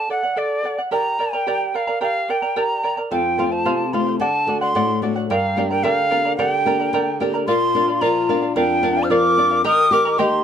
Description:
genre	andean folk, Andean ensemble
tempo	110 BPM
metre	2/4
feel	straight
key	G minor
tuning	A4 = 437 Hz
part	bright quena	melody	0.0-10.4 s	D5 to F6	-20 LUFS	right 1 dB	none
part	charango	accompaniment	0.0-10.4 s	G4 to Bb5	-22 LUFS	right 2 dB	none
part	flamenco guitar	accompaniment	3.1-10.4 s	F2 to G4	-23 LUFS	left 2 dB	none
part	bright polished pan flute	second line	7.5-10.4 s	D4 to C5	-23 LUFS	left 8 dB	none
room	moderate small room reverb, RT60 0.5 s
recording	dark, warm production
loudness	-17 LUFS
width	side -8 dB against mid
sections	0.0-7.5 A section; 7.5-10.4 B section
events	none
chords	0.0 D; 0.9 Gm; 3.1 F; 4.2 D; 5.3 Gm; 7.5 Bb; 9.6 Eb

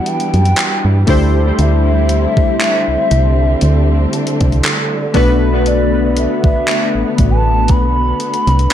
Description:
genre	contemporary R&B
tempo	59 BPM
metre	4/4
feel	swing 54% on 16ths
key	unclear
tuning	A4 = 440 Hz
part	gliding portamento lead	melody	0.0-8.7 s	D5 to B5	-19 LUFS	left 1 dB	chorus, analog delay
part	warm analog keys	accompaniment	0.0-8.7 s	A3 to C5	-18 LUFS	left 3 dB	chorus, analog delay
part	dark studio string section	sustained chords	0.0-8.7 s	D3 to E4	-21 LUFS	right 1 dB	none
part	large celesta	texture	0.0-6.2 s	A4 to A5	-28 LUFS	right 5 dB	analog delay
part	gated 80s digital drum machine	drums	0.1-8.7 s	handclaps, hi-hat, kick drum	-17 LUFS	equal	gated reverb, overdrive, vintage 12-bit sampler grit
part	solid FM bass	bass	0.3-8.7 s	A1 to G2	-13 LUFS	equal	none
room	little or no reverb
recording	echo-heavy mix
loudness	-11 LUFS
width	side -10 dB against mid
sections	0.0-8.7 A section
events	none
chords	0.0 Em9; 1.1 D9sus4; 5.1 Bm7

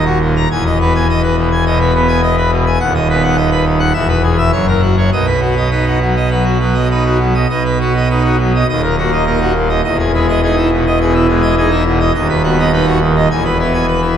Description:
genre	classical, organ toccata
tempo	104 BPM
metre	4/4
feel	straight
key	B major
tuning	A4 = 440 Hz
part	pipe organ, full organ	solo	0.0-14.2 s	D#1 to A#5	-11 LUFS	equal	none
room	wet church reverb, RT60 2.8 s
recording	none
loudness	-11 LUFS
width	side -9 dB against mid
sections	0.0-7.5 A section; 7.5-14.2 B section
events	none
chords	0.5 Emaj7; 2.8 B/D#; 4.0 E; 4.5 F#; 5.1 B; 8.7 D#m; 9.8 Emaj7; 12.1 B/D#; 13.3 E

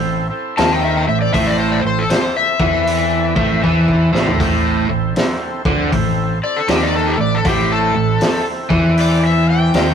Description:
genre	blues rock power trio and southern rock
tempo	79 BPM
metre	4/4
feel	swing 64% on 8ths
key	A minor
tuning	A4 = 441 Hz
part	overdriven tonewheel organ	sustained chords	0.0-9.9 s	C4 to A5	-25 LUFS	right 2 dB	slow rotary speaker
part	biting overdriven guitar	riff	0.0-9.9 s	A2 to E3	-17 LUFS	right 2 dB	none
part	growling fingered electric bass	bass	0.0-9.9 s	A1 to E2	-20 LUFS	equal	overdrive
part	overdriven slide guitar	melody	0.6-9.9 s	G4 to A5	-18 LUFS	left 5 dB	none
part	vintage drum kit	drums	0.6-9.9 s	hi-hat, kick drum, snare drum, toms	-20 LUFS	equal	none
room	light reverb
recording	rough rehearsal-room recording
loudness	-13 LUFS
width	side -7 dB against mid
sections	0.0-9.9 A section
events	tonewheel organ fill 3.2-4.4; drum fill 3.6-4.4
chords	0.0 Am

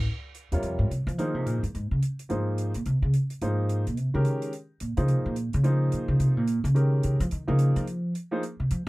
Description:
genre	modal jazz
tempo	216 BPM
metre	4/4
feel	swing 61% on 8ths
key	Bb dorian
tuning	A4 = 439 Hz
part	upright bass	bass	0.0-8.9 s	E2 to F3	-24 LUFS	equal	none
part	hi-hat	drums	0.3-8.8 s	none	-41 LUFS	right 1 dB	none
part	clear upright piano	accompaniment	0.5-8.4 s	C3 to Db5	-30 LUFS	equal	none
room	little or no reverb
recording	dry, close 1970s-style studio recording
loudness	-24 LUFS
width	side -20 dB against mid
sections	0.1-8.9 A section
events	upright bass solo 0.1-8.9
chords	0.1 Bbm9

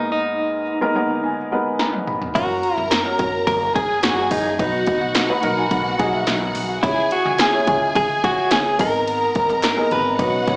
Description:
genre	piano-driven pop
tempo	107 BPM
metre	4/4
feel	straight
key	unclear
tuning	A4 = 440 Hz
part	direct-recorded clean electric guitar	melody	0.0-10.6 s	D#4 to B4	-20 LUFS	equal	tremolo, slapback echo
part	warm upright piano	accompaniment	0.0-10.6 s	G#2 to B5	-23 LUFS	equal	slapback echo
part	deep house drum kit	drums	1.8-10.6 s	hi-hat, kick drum, ride cymbal, snare drum, toms	-22 LUFS	equal	overdrive
part	warm symphonic violin section	second line	2.4-10.6 s	F#4 to A#5	-24 LUFS	equal	slapback echo
part	upright bass	bass	2.4-10.6 s	F#1 to C#2	-29 LUFS	equal	none
part	group handclap	percussion	2.9-9.8 s	none	-31 LUFS	equal	none
room	light reverb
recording	live gig heard through the venue's PA, club reverb, small speaker sound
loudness	-17 LUFS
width	side -29 dB against mid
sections	0.0-10.6 A section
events	upright piano fill 0.7-2.4, 5.2-6.8; drum fill 1.8-2.4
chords	0.0 G#madd9; 2.4 F#; 4.6 B; 6.8 C#m; 8.8 G#madd9

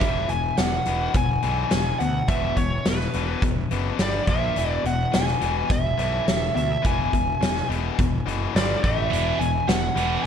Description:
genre	hard rock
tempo	106 BPM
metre	4/4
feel	straight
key	E mixolydian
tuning	A4 = 443 Hz
part	smooth overdriven lead guitar	melody	0.0-10.3 s	B4 to G#5	-26 LUFS	right 1 dB	none
part	tight distorted guitar	riff	0.0-10.2 s	E2 to A#3	-28 LUFS	left 10 dB	distortion
part	fuzz picked electric bass	bass	0.0-10.2 s	E1 to D2	-27 LUFS	right 1 dB	overdrive
part	huge arena drum kit	drums	0.0-10.1 s	hi-hat, kick drum, snare drum	-25 LUFS	equal	vintage 12-bit sampler grit, gated reverb
part	high-gain distorted guitar	riff	9.1-10.2 s	E2 to E3	-30 LUFS	right 11 dB	distortion
room	light reverb, studio reverb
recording	bright 1980s-style digital production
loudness	-20 LUFS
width	side -8 dB against mid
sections	0.0-10.3 A section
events	none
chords	0.0 E; 4.0 G5; 4.3 A#5; 4.6 E; 8.6 G5; 8.8 A5; 9.1 E

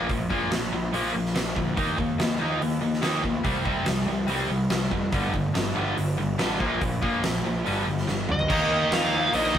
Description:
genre	hard rock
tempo	143 BPM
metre	4/4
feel	straight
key	unclear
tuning	A4 = 440 Hz
part	crunchy overdriven guitar	riff	0.0-9.6 s	G2 to Eb4	-30 LUFS	left 5 dB	none
part	tight distorted guitar	riff	0.0-9.6 s	G2 to Eb4	-28 LUFS	right 2 dB	distortion
part	fuzz picked electric bass	bass	0.0-9.6 s	F1 to F2	-31 LUFS	equal	overdrive
part	huge arena drum kit	drums	0.1-9.6 s	crash cymbal, hi-hat, kick drum, snare drum, toms	-28 LUFS	equal	none
part	nasal lead guitar with a parked wah	melody	8.3-9.6 s	Eb5 to F5	-25 LUFS	right 1 dB	overdrive
part	scooped high-gain guitar	riff	8.5-9.6 s	Eb3 to G4	-28 LUFS	equal	distortion
room	moderate stone room reverb, RT60 1.1 s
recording	rough rehearsal-room recording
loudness	-23 LUFS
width	side -9 dB against mid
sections	0.0-8.5 A section; 8.5-9.6 B section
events	drum fill 8.1-8.5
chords	0.0 Bb5; 1.8 Eb5; 3.4 C5; 5.1 G5; 6.6 Bb5; 7.7 G5; 8.5 Eb

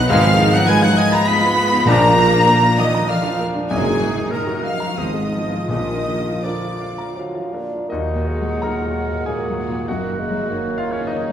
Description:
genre	classical, romantic movement for piano and orchestra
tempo	78-103 BPM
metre	3/4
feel	rubato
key	Eb minor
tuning	A4 = 442 Hz
part	clear grand piano	melody	0.0-11.3 s	B1 to B5	-22 LUFS	left 1 dB	none
part	rich symphonic violin section	melody	0.0-11.3 s	Gb4 to Cb7	-28 LUFS	left 3 dB	none
part	rich chamber violin section	second line	0.0-11.3 s	Eb4 to Cb6	-27 LUFS	left 1 dB	none
part	dark studio viola section	accompaniment	0.0-11.3 s	D3 to F4	-28 LUFS	right 1 dB	none
part	clear chamber double bass section	bass	0.0-11.3 s	Gb1 to Eb2	-27 LUFS	right 1 dB	none
part	rich studio cello section	bass	0.0-11.3 s	Eb2 to Cb4	-26 LUFS	right 1 dB	none
part	dark clarinet	second line	0.1-11.3 s	Eb4 to Cb6	-28 LUFS	equal	none
part	hollow concert flute	second line	0.1-11.3 s	Ab4 to Cb6	-25 LUFS	equal	none
part	mellow oboe	second line	0.1-11.3 s	Db4 to Cb6	-26 LUFS	right 1 dB	none
part	bright trombone section	sustained chords	0.1-6.0 s	Ab2 to Ab3	-28 LUFS	right 2 dB	none
part	warm French horn section	sustained chords	0.1-11.3 s	Eb3 to F4	-27 LUFS	left 1 dB	none
part	mellow tuba	bass	0.1-6.3 s	Gb1 to Bb1	-25 LUFS	right 2 dB	none
part	timpani	percussion	1.9-2.7, 5.7-6.8 s	Bb2	-26 LUFS	left 1 dB	none
part	mellow bassoon	accompaniment	6.4-11.3 s	F3 to D4	-27 LUFS	right 3 dB	none
room	wet recital hall reverb, RT60 1.4 s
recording	recorded in a church or concert hall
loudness	-16 LUFS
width	side -9 dB against mid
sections	0.0-7.9 A section; 7.9-11.3 B section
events	none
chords	0.1 Fm7b5/Ab; 1.9 Bb; 3.7 Ebm/Gb; 5.0 Fdim/Ab; 5.7 Bb; 7.9 Ebm; 9.9 Ebm/Gb

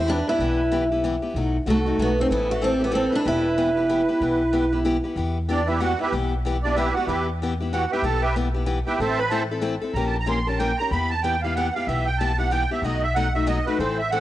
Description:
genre	acoustic string swing (jazz manouche)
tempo	188 BPM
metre	3/4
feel	swing 60% on 8ths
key	E minor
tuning	A4 = 439 Hz
part	picked steel-string acoustic guitar	melody	0.0-4.8 s	A3 to E4	-22 LUFS	right 1 dB	cassette tape
part	musette accordion	second line	0.0-14.2 s	D4 to C6	-26 LUFS	right 4 dB	cassette tape
part	picked steel-string acoustic guitar	accompaniment	0.0-14.2 s	B2 to A#4	-27 LUFS	left 4 dB	cassette tape
part	upright bass	bass	0.0-14.2 s	E1 to E2	-27 LUFS	equal	none
room	light reverb, studio reverb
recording	home recording on cassette, nothing above 11.0 kHz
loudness	-20 LUFS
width	side -14 dB against mid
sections	0.0-5.2 A section; 5.2-14.2 B section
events	accordion solo 5.2-14.2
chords	0.0 Em; 1.4 B7; 2.3 Am; 3.3 Em; 9.0 Am; 10.0 A#dim7; 10.9 Em; 12.8 B7

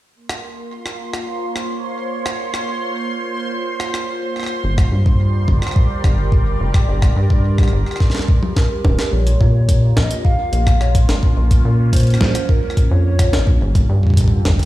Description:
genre	IDM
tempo	107 BPM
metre	4/4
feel	straight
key	Bb dorian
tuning	A4 = 443 Hz
part	phased analog pad	sustained chords	0.3-14.7 s	D3 to G5	-26 LUFS	right 2 dB	phaser, chorus
part	bubbling stepped-filter texture	texture	0.4-9.1 s	C6	-30 LUFS	right 3 dB	chorus, built-in reverb, sidechain pumping
part	jungle sampler-style drum kit	drums	0.3-14.7 s	hi-hat, rim click, snare drum, toms	-25 LUFS	equal	none
part	rubbery square bass	bass	4.6-14.6 s	D1 to Bb2	-16 LUFS	equal	none
part	electronic kick drum	drums	4.8-14.6 s	none	-15 LUFS	equal	none
part	warbly nostalgic lead	melody	8.6-13.4 s	Bb4 to F5	-26 LUFS	equal	chorus, vintage 12-bit sampler grit, tape echo
room	digital ambience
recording	played on a big sound system in a bare room, large studio reverb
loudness	-14 LUFS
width	side -16 dB against mid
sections	0.2-9.1 A section; 9.1-14.7 B section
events	drum fill 8.0-9.1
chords	0.2 Bbmadd9; 4.6 Gm; 9.1 Bbm; 13.6 Gm

